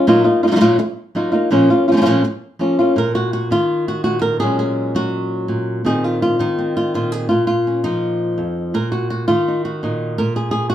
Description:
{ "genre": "flamenco", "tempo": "166 BPM", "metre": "4/4", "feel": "straight", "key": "unclear", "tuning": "A4 = 437 Hz", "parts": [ { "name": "flamenco guitar", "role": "solo", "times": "0.0-10.7 s", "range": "F2 to Bb4", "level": "-15 LUFS", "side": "equal", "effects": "none" } ], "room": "wet studio reverb, RT60 0.7 s", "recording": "heard from further back in the room", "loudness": "-15 LUFS", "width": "side -11 dB against mid", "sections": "0.0-3.0 A section; 3.0-10.7 B section", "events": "none", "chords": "0.1 Ebmadd9/Bb; 1.5 Bbm; 3.0 Eb5/Bb; 4.4 Gbsus2/Bb; 5.8 Bb9sus4; 7.3 Bb5; 8.7 Ebm/Bb; 10.2 N.C." }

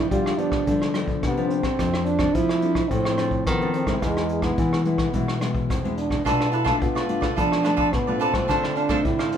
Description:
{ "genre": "samba and choro", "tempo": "107 BPM", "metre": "4/4", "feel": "straight", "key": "unclear", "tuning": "A4 = 440 Hz", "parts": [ { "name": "warm French horn", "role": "melody", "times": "0.0-9.4 s", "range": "G#3 to F4", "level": "-25 LUFS", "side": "right 3 dB", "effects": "none" }, { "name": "nylon-string guitar", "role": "accompaniment", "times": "0.0-9.4 s", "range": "G2 to A4", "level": "-27 LUFS", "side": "left 4 dB", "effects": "none" }, { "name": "nylon-string guitar", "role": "bass", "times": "0.0-9.4 s", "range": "E2 to B3", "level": "-27 LUFS", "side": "equal", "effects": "none" }, { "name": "vintage brush drum kit", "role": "drums", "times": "0.1-9.4 s", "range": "hi-hat, kick drum, rim click", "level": "-27 LUFS", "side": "equal", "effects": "none" }, { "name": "cavaquinho", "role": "accompaniment", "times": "6.2-9.4 s", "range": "D4 to F5", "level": "-25 LUFS", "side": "right 1 dB", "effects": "none" } ], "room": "moderate large studio reverb, RT60 1.2 s", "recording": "band playing live in one room", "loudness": "-20 LUFS", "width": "side -8 dB against mid", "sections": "0.0-9.4 A section", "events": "none", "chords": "0.0 G7; 1.8 Dm7/F; 4.0 E; 6.3 Bm7b5; 8.5 Dm7" }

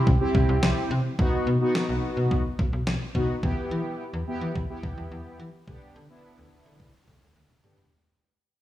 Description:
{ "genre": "synth-pop", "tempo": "107 BPM", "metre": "4/4", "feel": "straight", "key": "G major", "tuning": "A4 = 441 Hz", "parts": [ { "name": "analog synth brass", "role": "accompaniment", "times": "0.0-7.8 s", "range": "B3 to G4", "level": "-28 LUFS", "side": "equal", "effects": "chorus" }, { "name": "slap-like FM bass", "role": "bass", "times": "0.0-7.7 s", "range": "B1 to E3", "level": "-26 LUFS", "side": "equal", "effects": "none" }, { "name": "clean 12-bit digital drum machine", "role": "drums", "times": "0.1-7.9 s", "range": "kick drum, snare drum, toms", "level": "-26 LUFS", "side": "equal", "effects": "none" } ], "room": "light reverb, digital ambience", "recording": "small room reverb", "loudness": "-23 LUFS", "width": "side -13 dB against mid", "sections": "0.0-7.9 A section", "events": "fade-out 0.0-7.9; drum fill 7.4-7.9", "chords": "0.0 C; 1.2 B; 3.4 Em; 5.7 G/D" }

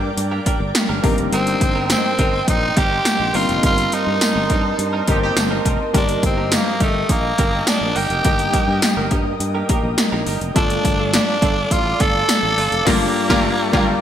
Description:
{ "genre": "1980s-style pop", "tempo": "104 BPM", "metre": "4/4", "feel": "straight", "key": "unclear", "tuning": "A4 = 438 Hz", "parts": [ { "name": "warm grand piano", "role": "accompaniment", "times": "0.0-14.0 s", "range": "G2 to D5", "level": "-24 LUFS", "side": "left 4 dB", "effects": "analog chorus" }, { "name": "ethereal airy pad", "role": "sustained chords", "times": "0.0-14.0 s", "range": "A4 to Eb6", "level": "-27 LUFS", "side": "right 1 dB", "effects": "ensemble chorus, built-in reverb" }, { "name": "direct-recorded clean electric guitar", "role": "riff", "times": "0.0-13.9 s", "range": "G3 to Bb4", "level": "-28 LUFS", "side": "right 4 dB", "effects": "lush chorus" }, { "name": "sustaining fretless electric bass", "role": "bass", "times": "0.0-13.9 s", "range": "F1 to G2", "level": "-24 LUFS", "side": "equal", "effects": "none" }, { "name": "80s electronic pad drums", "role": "drums", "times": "0.2-13.9 s", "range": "crash cymbal, hi-hat, kick drum, snare drum, tambourine", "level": "-19 LUFS", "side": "equal", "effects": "gated reverb" }, { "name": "raspy tenor saxophone", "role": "melody", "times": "1.3-14.0 s", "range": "A3 to A4", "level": "-20 LUFS", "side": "right 1 dB", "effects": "none" }, { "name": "warm horn section", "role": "stabs", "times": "5.1-5.6, 12.9-13.9 s", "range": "C4 to Bb4", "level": "-26 LUFS", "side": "right 2 dB", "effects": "digital delay" } ], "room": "moderate lush hall reverb, RT60 1.8 s", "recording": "bright 1980s-style digital production", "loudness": "-15 LUFS", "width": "side -10 dB against mid", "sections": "0.0-14.0 A section", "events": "band accent 3.6-5.9, 12.9-14.0", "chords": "0.0 Gm; 1.0 Cm7; 5.9 Eb; 10.6 Dm/G; 12.9 Gm7" }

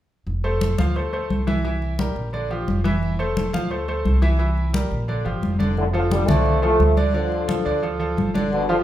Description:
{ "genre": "latin, salsa", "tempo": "175 BPM", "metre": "4/4", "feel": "straight", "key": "F major", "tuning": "A4 = 440 Hz", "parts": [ { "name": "upright bass", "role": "bass", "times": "0.3-8.8 s", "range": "F1 to D2", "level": "-23 LUFS", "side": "equal", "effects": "none" }, { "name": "congas", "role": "percussion", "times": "0.3-8.8 s", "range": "none", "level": "-25 LUFS", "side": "left 1 dB", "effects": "none" }, { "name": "bright grand piano", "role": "accompaniment", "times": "0.4-8.8 s", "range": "D3 to F5", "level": "-25 LUFS", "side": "right 1 dB", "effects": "none" }, { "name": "mellow trombone section", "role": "melody", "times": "5.8-8.8 s", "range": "A2 to A3", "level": "-21 LUFS", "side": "left 1 dB", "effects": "none" } ], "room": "wet large studio reverb, RT60 0.9 s", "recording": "band playing live in one room", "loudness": "-19 LUFS", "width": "side -12 dB against mid", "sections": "0.3-5.8 A section; 5.8-8.8 B section", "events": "none", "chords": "0.3 F; 1.0 Dsus2; 1.6 C7; 2.3 Bb6; 3.0 Fmaj7; 3.7 Dsus2; 4.4 C7; 5.1 Bb6; 5.8 F6; 7.1 Dm" }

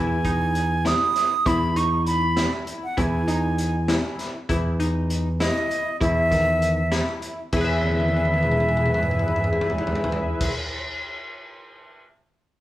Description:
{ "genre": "progressive instrumental, band music in an uneven meter", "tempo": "198 BPM (eighths)", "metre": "5/8", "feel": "straight", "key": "E major", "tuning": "A4 = 440 Hz", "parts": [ { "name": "reedy concert flute", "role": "melody", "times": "0.0-10.5 s", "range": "D#5 to D#6", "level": "-24 LUFS", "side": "right 2 dB", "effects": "none" }, { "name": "tight sequenced synth", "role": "arpeggios", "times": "0.0-10.5 s", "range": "D#3 to E5", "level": "-28 LUFS", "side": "left 2 dB", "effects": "chorus" }, { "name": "picked electric bass", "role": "bass", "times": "0.0-10.5 s", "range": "E2", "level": "-24 LUFS", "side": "equal", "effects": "none" }, { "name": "crunchy breakbeat drum kit", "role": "drums", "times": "0.2-12.0 s", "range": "crash cymbal, hi-hat, kick drum, snare drum, toms", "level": "-28 LUFS", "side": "equal", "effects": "none" } ], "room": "moderate large studio reverb, RT60 1.3 s", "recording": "band playing live in one room", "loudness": "-20 LUFS", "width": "side -14 dB against mid", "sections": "0.0-7.5 A section; 7.5-10.6 B section", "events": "drum fill 7.8-10.4", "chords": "0.0 Emaj7; 7.5 E" }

